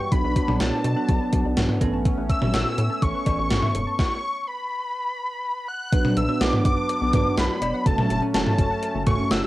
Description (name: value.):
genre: synth-pop.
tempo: 124 BPM.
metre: 4/4.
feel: straight.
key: B minor.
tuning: A4 = 442 Hz.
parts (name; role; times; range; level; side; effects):
wide unison lead; melody; 0.0-9.5 s; A5 to F#6; -27 LUFS; left 1 dB; cassette tape.
warm analog pad; sustained chords; 0.0-9.5 s; F#3 to D4; -28 LUFS; equal; chorus, cassette tape.
soft round pluck; arpeggios; 0.0-9.5 s; F#3 to F#6; -35 LUFS; left 6 dB; chorus, cassette tape.
bell-like tine electric piano; accompaniment; 0.1-9.5 s; A3 to B4; -30 LUFS; right 6 dB; cassette tape.
rubbery square bass; bass; 0.1-9.4 s; E1 to B2; -27 LUFS; equal; none.
gated 80s digital drum machine; drums; 0.1-9.4 s; cowbell, hi-hat, kick drum, snare drum, toms; -23 LUFS; equal; gated reverb, gated reverb snare, overdrive, cassette tape.
room: moderate booth ambience, RT60 0.2 s.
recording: home recording on cassette.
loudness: -20 LUFS.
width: side -16 dB against mid.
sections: 0.0-5.9 A section; 5.9-9.5 B section.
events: stop 4.0-5.9.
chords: 0.1 Bm; 1.8 Aadd9; 4.0 N.C.; 5.9 Bm; 7.9 F#m.